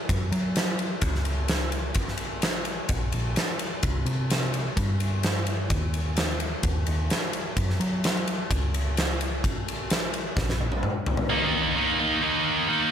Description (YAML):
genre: quiet-loud alternative rock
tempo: 128 BPM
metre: 4/4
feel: straight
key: unclear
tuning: A4 = 440 Hz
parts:
  - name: hollow-body short-scale picked electric bass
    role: bass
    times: 0.1-10.8 s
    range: Bb1 to F#3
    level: -28 LUFS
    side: equal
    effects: none
  - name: huge arena drum kit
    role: drums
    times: 0.1-11.3 s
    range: kick drum, ride cymbal, snare drum, toms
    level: -26 LUFS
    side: equal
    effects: none
  - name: scooped high-gain guitar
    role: riff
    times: 11.3-12.9 s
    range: Eb3 to Eb4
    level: -21 LUFS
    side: right 1 dB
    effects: distortion
room: little or no reverb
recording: none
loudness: -24 LUFS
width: side -9 dB against mid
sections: 0.0-11.3 A section; 11.3-12.9 B section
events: drum fill 10.4-11.3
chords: 0.1 F#5; 2.0 N.C.; 3.8 C5; 5.7 N.C.; 7.6 F#5; 9.4 N.C.; 11.3 Eb5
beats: | 0.09 0.56 1.03 1.50 | 1.96 2.43 2.90 3.37 | 3.83 4.30 4.77 5.24 | 5.71 6.17 6.64 7.11 | 7.58 8.04 8.51 8.98 | 9.44 9.91 10.37 10.84 | 11.30 11.76 12.23 12.69